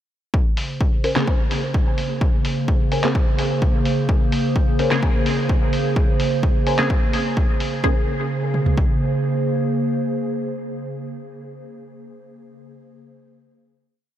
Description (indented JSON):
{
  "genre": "dub techno",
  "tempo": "128 BPM",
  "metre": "4/4",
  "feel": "straight",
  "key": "Bb minor",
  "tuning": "A4 = 439 Hz",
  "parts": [
    { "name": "warbly tape-like pad", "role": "sustained chords", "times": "0.6-11.7 s", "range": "Db3 to C5", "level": "-23 LUFS", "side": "right 1 dB", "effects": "chorus, built-in reverb, sidechain pumping" },
    { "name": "punchy analog drum machine", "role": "drums", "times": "0.3-8.9 s", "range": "kick drum, toms", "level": "-19 LUFS", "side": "equal", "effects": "studio reverb" },
    { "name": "lo-fi sampler-style drum kit", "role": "drums", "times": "0.6-7.7 s", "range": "handclaps, hi-hat", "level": "-30 LUFS", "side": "equal", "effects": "studio reverb, dub echo" },
    { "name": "filtered dub chord stab", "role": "riff", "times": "1.0-11.7 s", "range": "Db4 to Ab5", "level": "-30 LUFS", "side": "left 2 dB", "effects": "phaser, vintage 12-bit sampler grit, sidechain pumping, dub echo" },
    { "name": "filtered dub chord stab", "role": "stabs", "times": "1.2-11.7 s", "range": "Db3 to C5", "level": "-27 LUFS", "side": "left 1 dB", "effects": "phaser, sidechain pumping, dub echo" }
  ],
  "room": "moderate huge ambient reverb, RT60 7.7 s",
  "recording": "dreamy mix soaked in reverb",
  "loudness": "-18 LUFS",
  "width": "side -11 dB against mid",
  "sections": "0.3-7.8 groove; 7.8-11.6 final chord",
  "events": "none",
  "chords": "0.3 Bbm9"
}